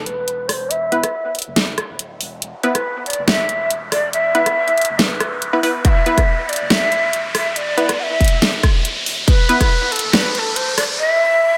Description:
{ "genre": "deep dubstep", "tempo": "140 BPM", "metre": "4/4", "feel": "swing 53% on 16ths, half-time", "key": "unclear", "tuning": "A4 = 440 Hz", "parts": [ { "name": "breathy bright ney", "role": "melody", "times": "0.0-11.6 s", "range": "A4 to F#5", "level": "-21 LUFS", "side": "equal", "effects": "low-pass filter, dub echo" }, { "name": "soft dub sub bass", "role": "bass", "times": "0.0-11.0 s", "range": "D1 to F#1", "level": "-44 LUFS", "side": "equal", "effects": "tube saturation, high-pass filter" }, { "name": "riser", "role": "sound effects", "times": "1.3-11.0 s", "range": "none", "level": "-28 LUFS", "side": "equal", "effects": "none" }, { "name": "dubstep drum kit", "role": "drums", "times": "0.1-10.9 s", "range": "hi-hat, rim click, snare drum", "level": "-21 LUFS", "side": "equal", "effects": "none" }, { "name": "filtered dub chord stab", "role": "stabs", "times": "0.9-9.6 s", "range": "B3 to B4", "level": "-24 LUFS", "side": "equal", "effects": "chorus, dub echo" }, { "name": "electronic kick drum", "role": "drums", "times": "5.8-9.7 s", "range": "none", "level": "-17 LUFS", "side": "equal", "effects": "none" } ], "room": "wet spring reverb, RT60 1.8 s, digital ambience", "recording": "none", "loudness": "-17 LUFS", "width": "mono", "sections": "0.0-11.6 A section", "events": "build-up 0.0-11.6; filter sweep on ney 0.0-11.6; riser 1.3-11.0", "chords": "0.0 E5", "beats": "0.28 | 0.71 1.13 1.56 1.99 | 2.42 2.85 3.28 3.71 | 4.13 4.56 4.99 5.42 | 5.85 6.28 6.71 7.13 | 7.56 7.99 8.42 8.85 | 9.28 9.71 10.13 10.56 | 10.99 11.42" }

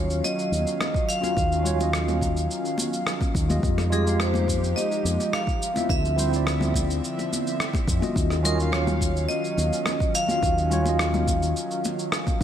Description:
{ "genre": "sunset chillout", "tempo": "106 BPM", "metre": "4/4", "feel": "straight", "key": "unclear", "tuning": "A4 = 439 Hz", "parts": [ { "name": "vibraphone with hard mallets", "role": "melody", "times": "0.0-11.8 s", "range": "Ab4 to F5", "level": "-28 LUFS", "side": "right 1 dB", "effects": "tape echo" }, { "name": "bright tine electric piano", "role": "accompaniment", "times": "0.0-12.4 s", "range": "Ab3 to F5", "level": "-29 LUFS", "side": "moving between left 7 dB and right 4 dB", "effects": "medium stereo tremolo, auto-pan" }, { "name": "airy breathy pad", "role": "sustained chords", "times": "0.0-12.4 s", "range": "D3 to F5", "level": "-32 LUFS", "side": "equal", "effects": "chorus" }, { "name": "fingered electric bass with an envelope filter", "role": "bass", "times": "0.0-12.4 s", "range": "D2 to F2", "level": "-25 LUFS", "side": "equal", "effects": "tube saturation" }, { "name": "electronic shaker and rim click", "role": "drums", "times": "0.1-12.4 s", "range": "none", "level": "-30 LUFS", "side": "equal", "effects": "none" }, { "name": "congas", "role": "percussion", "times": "0.2-12.4 s", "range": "none", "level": "-33 LUFS", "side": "left 3 dB", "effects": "none" }, { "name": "electronic kick drum", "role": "drums", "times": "0.9-12.4 s", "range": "none", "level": "-26 LUFS", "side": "equal", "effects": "none" } ], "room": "light reverb", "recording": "none", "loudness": "-22 LUFS", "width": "side -10 dB against mid", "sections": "0.0-12.4 A section", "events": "none", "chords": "0.0 Ebm9; 3.6 Fm9; 5.6 Dm9; 8.2 Ebm9", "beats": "0.24 0.81 | 1.37 1.94 2.50 3.07 | 3.64 4.20 4.77 5.33 | 5.90 6.47 7.03 7.60 | 8.16 8.73 9.30 9.86 | 10.43 11.00 11.56 12.13" }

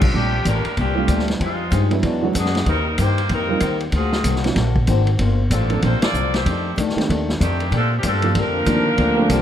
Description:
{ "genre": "jazz, big band swing", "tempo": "190 BPM", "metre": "4/4", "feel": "swing 62% on 8ths", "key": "Bb major", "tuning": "A4 = 440 Hz", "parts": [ { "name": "bright saxophone section", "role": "melody", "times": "0.0-9.4 s", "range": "Eb3 to D5", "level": "-23 LUFS", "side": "equal", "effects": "none" }, { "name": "picked old ladder-braced acoustic guitar", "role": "accompaniment", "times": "0.0-9.4 s", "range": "F2 to G4", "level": "-26 LUFS", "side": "left 8 dB", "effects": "none" }, { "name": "upright bass", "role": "bass", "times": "0.0-9.4 s", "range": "G1 to Bb2", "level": "-20 LUFS", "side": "equal", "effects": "none" }, { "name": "vintage drum kit", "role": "drums", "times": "0.0-9.4 s", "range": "crash cymbal, hi-hat, kick drum, ride cymbal, snare drum", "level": "-25 LUFS", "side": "equal", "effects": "none" }, { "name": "dark baby grand piano", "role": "accompaniment", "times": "0.1-9.3 s", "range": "Eb3 to A4", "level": "-24 LUFS", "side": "right 6 dB", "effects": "none" }, { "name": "warm trombone section", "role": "second line", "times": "8.4-9.4 s", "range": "D3 to Bb3", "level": "-21 LUFS", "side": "right 1 dB", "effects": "none" } ], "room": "light reverb", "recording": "close, detailed microphones", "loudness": "-17 LUFS", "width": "side -10 dB against mid", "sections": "0.1-9.4 A section", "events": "band accent 6.0", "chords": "0.1 Bbmaj13; 1.4 Fm9; 2.0 E9; 2.7 Eb6; 3.9 D7alt; 5.2 Gm11; 6.5 F13; 7.7 Bbmaj13", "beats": "| 0.14 0.45 0.77 1.09 | 1.40 1.72 2.04 2.35 | 2.67 2.98 3.30 3.62 | 3.93 4.25 4.56 4.88 | 5.19 5.51 5.83 6.14 | 6.46 6.77 7.09 7.40 | 7.72 8.04 8.35 8.67 | 8.98 9.30" }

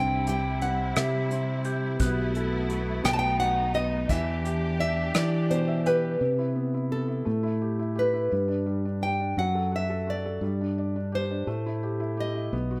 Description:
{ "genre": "acoustic folk-pop ballad", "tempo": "57 BPM (dotted quarters)", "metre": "6/8", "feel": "straight", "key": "unclear", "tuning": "A4 = 441 Hz", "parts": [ { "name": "nylon-string guitar", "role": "melody", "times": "0.0-12.8 s", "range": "A4 to A5", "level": "-31 LUFS", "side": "equal", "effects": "slapback echo" }, { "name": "felt-muted upright piano", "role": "accompaniment", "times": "0.0-12.8 s", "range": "B2 to G5", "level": "-35 LUFS", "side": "equal", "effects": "none" }, { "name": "warm studio string section", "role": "sustained chords", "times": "0.0-6.2 s", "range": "C3 to G4", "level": "-38 LUFS", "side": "equal", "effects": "none" }, { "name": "vibraphone with hard mallets", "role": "arpeggios", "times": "0.0-3.4 s", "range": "D4 to G4", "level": "-38 LUFS", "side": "equal", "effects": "none" }, { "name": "fingered electric bass", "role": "bass", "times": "0.0-12.8 s", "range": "B1 to E3", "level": "-31 LUFS", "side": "equal", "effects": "none" }, { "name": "vintage brush drum kit", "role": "drums", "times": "0.3-6.0 s", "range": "hi-hat, kick drum, rim click", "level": "-32 LUFS", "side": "equal", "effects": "none" } ], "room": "light reverb", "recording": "none", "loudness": "-27 LUFS", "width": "mono", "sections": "0.0-6.2 A section; 6.2-12.8 B section", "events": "none", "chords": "0.0 C; 2.0 B7sus4; 3.0 B7; 4.1 Em7; 6.2 Cmaj7; 7.3 A5; 8.3 G; 9.4 F#m7; 10.4 G5; 11.5 Am7", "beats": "0.96 | 2.00 3.04 | 4.09 5.14 | 6.20 7.26 | 8.31 9.37 | 10.42 11.47 | 12.53" }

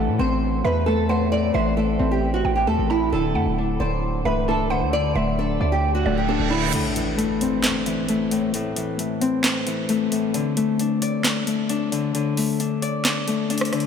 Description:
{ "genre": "hip hop, trap", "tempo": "133 BPM", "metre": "4/4", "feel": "half-time", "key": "A dorian", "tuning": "A4 = 438 Hz", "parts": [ { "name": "mallet-like synth pluck", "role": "second line", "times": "0.0-6.7 s", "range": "D5 to A5", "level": "-31 LUFS", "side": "right 4 dB", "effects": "chorus, diffuse ambient delay" }, { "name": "Celtic harp", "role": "accompaniment", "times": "0.0-13.9 s", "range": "A2 to D5", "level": "-22 LUFS", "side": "left 4 dB", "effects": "none" }, { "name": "distorted 808-style bass", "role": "bass", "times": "0.0-6.7 s", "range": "C1 to A2", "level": "-25 LUFS", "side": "right 1 dB", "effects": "distortion" }, { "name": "nylon-string guitar", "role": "melody", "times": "0.2-6.7 s", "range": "E4 to D5", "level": "-25 LUFS", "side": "right 2 dB", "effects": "lush chorus, diffuse ambient delay" }, { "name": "reverse cymbal and impact", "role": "sound effects", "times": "6.0-8.5 s", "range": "none", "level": "-30 LUFS", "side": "right 4 dB", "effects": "none" }, { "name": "trap drum kit", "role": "drums", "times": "6.7-13.9 s", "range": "crash cymbal, handclaps, hi-hat, rim click, snare drum", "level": "-25 LUFS", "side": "right 1 dB", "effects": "overdrive" } ], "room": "wet cathedral reverb, RT60 5.1 s", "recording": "dreamy mix soaked in reverb", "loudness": "-20 LUFS", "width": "side -7 dB against mid", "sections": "0.0-6.7 A section; 6.7-13.9 B section", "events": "reverse cymbal 6.0-6.7; kick muted 6.7-13.9; impact 6.7-8.5", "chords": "0.0 Am; 3.1 D; 6.7 Am; 10.3 D5", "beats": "0.42 0.87 | 1.32 1.77 2.22 2.67 | 3.12 3.58 4.03 4.48 | 4.93 5.38 5.83 6.28 | 6.73 7.18 7.64 8.09 | 8.54 8.99 9.44 9.89 | 10.34 10.79 11.24 11.70 | 12.15 12.60 13.05 13.50" }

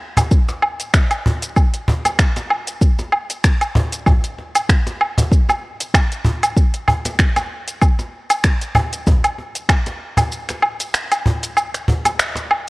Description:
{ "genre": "downtempo", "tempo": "96 BPM", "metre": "4/4", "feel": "swing 55% on 16ths", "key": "none", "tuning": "none", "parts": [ { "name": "deep house drum kit", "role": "drums", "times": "0.2-12.6 s", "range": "finger snaps, hi-hat, shaker, woodblock", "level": "-19 LUFS", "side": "equal", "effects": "none" }, { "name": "cajon", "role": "percussion", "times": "0.2-12.5 s", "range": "none", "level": "-19 LUFS", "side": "equal", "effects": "none" }, { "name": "electronic kick drum", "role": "drums", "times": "0.3-9.8 s", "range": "none", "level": "-14 LUFS", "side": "equal", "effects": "none" } ], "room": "light reverb, digital ambience", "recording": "worn, warbling old tape, cassette tape, warbly pitch drift", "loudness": "-15 LUFS", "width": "side -24 dB against mid", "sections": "0.0-12.7 A section", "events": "kick drops out 10.3-12.7", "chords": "none", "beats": "| 0.32 0.94 1.57 2.19 | 2.82 3.44 4.07 4.69 | 5.32 5.94 6.57 7.19 | 7.82 8.44 9.07 9.69 | 10.32 10.94 11.57 12.19" }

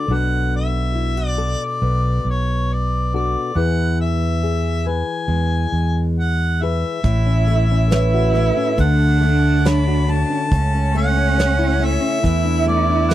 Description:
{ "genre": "acoustic folk-pop ballad", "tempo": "69 BPM", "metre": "4/4", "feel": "straight", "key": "A major", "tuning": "A4 = 440 Hz", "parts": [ { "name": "warm harmonica", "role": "melody", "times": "0.0-13.1 s", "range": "C#5 to B5", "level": "-24 LUFS", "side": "left 1 dB", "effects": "none" }, { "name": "nylon-string guitar", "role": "accompaniment", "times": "0.0-13.1 s", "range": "A2 to C#5", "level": "-23 LUFS", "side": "left 6 dB", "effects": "none" }, { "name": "fretless electric bass", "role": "bass", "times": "0.1-13.1 s", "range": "A1 to E2", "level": "-18 LUFS", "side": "right 1 dB", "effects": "none" }, { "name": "warm cello", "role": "second line", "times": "7.0-13.1 s", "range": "C#4 to E4", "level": "-23 LUFS", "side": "right 8 dB", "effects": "none" }, { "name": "soft brush drum kit", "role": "drums", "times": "7.0-13.1 s", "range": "hi-hat, kick drum, snare drum", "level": "-20 LUFS", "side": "right 1 dB", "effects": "none" }, { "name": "vibraphone with medium mallets", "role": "arpeggios", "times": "7.9-12.6 s", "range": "B4 to E5", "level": "-24 LUFS", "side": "right 5 dB", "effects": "none" } ], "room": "little or no reverb", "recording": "dry, close 1970s-style studio recording", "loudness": "-16 LUFS", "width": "side -13 dB against mid", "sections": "0.0-7.0 A section; 7.0-13.1 B section", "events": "none", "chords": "0.1 Bm7; 3.6 E; 7.0 A6; 8.8 Dmaj7; 10.5 A/C#; 12.2 E7sus4", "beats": "| 0.10 0.96 1.82 2.69 | 3.56 4.42 5.29 6.16 | 7.03 7.90 8.77 9.63 | 10.50 11.36 12.22 13.09" }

